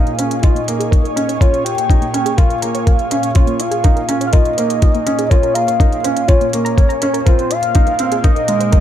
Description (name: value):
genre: piano and strings electronica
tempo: 123 BPM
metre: 4/4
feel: straight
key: Bb minor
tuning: A4 = 438 Hz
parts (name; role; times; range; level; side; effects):
- warm velvety synth lead; melody; 0.0-8.8 s; C5 to G5; -18 LUFS; left 1 dB; chorus, tremolo
- lush unison pad; sustained chords; 0.0-8.8 s; Bb2 to Db5; -24 LUFS; right 2 dB; chorus, sidechain pumping
- felt-muted upright piano; riff; 0.0-8.8 s; Ab3 to F4; -21 LUFS; right 1 dB; digital delay
- electronic hi-hat; drums; 0.1-8.8 s; none; -26 LUFS; right 1 dB; small room ambience
- soft round pluck; arpeggios; 0.2-8.8 s; Bb3 to Bb5; -26 LUFS; right 3 dB; chorus, sidechain pumping, digital delay
- electronic kick drum; drums; 0.4-8.8 s; none; -11 LUFS; equal; overdrive, small room ambience
room: light reverb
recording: none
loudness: -12 LUFS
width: side -11 dB against mid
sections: 0.0-8.8 A section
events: build-up 0.0-8.8; filter sweep on synth arpeggio sound 0.0-8.8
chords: 0.0 Bbm7; 7.3 Ab/Bb